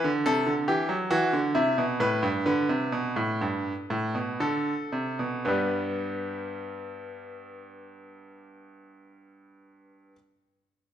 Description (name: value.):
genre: classical, baroque-style two-part invention for grand piano.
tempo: 55-71 BPM.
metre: 3/4.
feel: straight.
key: G major.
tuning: A4 = 440 Hz.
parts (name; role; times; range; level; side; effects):
bright baby grand piano; solo; 0.0-10.1 s; G2 to B4; -26 LUFS; equal; none.
room: wet recital hall reverb, RT60 1.5 s.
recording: none.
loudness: -25 LUFS.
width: side -10 dB against mid.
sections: 0.0-5.5 A section; 5.5-8.7 B section.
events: slowing down 0.0-5.5.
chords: 0.0 Em; 1.6 Am; 2.5 G; 4.4 D5; 5.5 G.